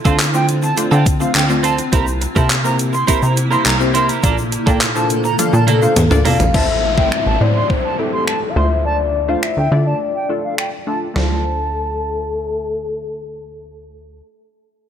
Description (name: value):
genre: dance-pop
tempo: 104 BPM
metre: 4/4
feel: straight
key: D minor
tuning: A4 = 437 Hz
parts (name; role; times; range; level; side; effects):
- granular cloud pad; sustained chords; 0.0-6.5 s; C3 to A4; -25 LUFS; equal; built-in reverb, sidechain pumping
- twelve-string electric guitar; riff; 0.0-6.4 s; Bb3 to Bb4; -22 LUFS; right 8 dB; lush chorus
- silver concert flute; melody; 0.1-12.8 s; F5 to C6; -23 LUFS; right 3 dB; sidechain pumping, low-pass filter, ping-pong delay
- punchy chord stab; accompaniment; 0.1-14.2 s; A3 to F5; -23 LUFS; left 2 dB; chorus, sidechain pumping, low-pass filter
- plucky analog bass; bass; 0.1-14.2 s; A1 to D3; -18 LUFS; equal; sidechain pumping
- gated 80s digital drum machine; drums; 0.1-11.3 s; crash cymbal, finger snaps, handclaps, hi-hat, kick drum, snare drum, toms; -18 LUFS; equal; gated reverb, gated reverb snare, overdrive
- egg shaker; percussion; 0.1-6.5 s; none; -30 LUFS; left 8 dB; none
- soft octave-layered synth lead; melody; 5.7-14.2 s; A4 to F5; -21 LUFS; left 5 dB; chorus, tremolo, low-pass filter, ping-pong delay
- downlifter; sound effects; 6.5-11.2 s; none; -26 LUFS; equal; none
room: light reverb, digital ambience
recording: none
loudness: -14 LUFS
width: side -9 dB against mid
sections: 0.0-6.5 A section; 6.5-11.2 B section; 11.2-13.5 C section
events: drop 0.0-6.5; drum fill 5.4-6.5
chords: 0.0 Dm7; 1.9 C7; 4.2 Bbmaj7; 6.5 Am; 8.6 Dm7